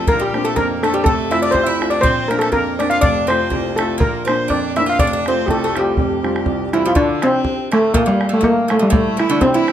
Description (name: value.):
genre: celtic folk, Celtic polka.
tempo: 122 BPM.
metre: 2/4.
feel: swing 55% on 8ths.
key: F major.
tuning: A4 = 440 Hz.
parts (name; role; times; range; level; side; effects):
steel pan; melody; 0.0-9.7 s; G3 to F5; -16 LUFS; equal; none.
Irish bouzouki; second line; 0.0-9.7 s; G2 to F4; -25 LUFS; right 2 dB; none.
rich fiddle; second line; 0.0-9.7 s; G3 to F5; -28 LUFS; left 4 dB; none.
warm upright piano; accompaniment; 0.0-6.9 s; F1 to F4; -20 LUFS; equal; none.
bodhran; percussion; 0.1-9.7 s; none; -22 LUFS; equal; none.
room: light reverb.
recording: close, detailed microphones.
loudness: -14 LUFS.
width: side -10 dB against mid.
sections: 0.0-7.0 A section; 7.0-9.7 A section.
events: none.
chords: 0.1 Bbadd9; 1.1 F; 2.0 Bbadd9; 3.0 F; 4.0 Bbadd9; 5.0 F; 6.0 Fsus2; 7.0 N.C..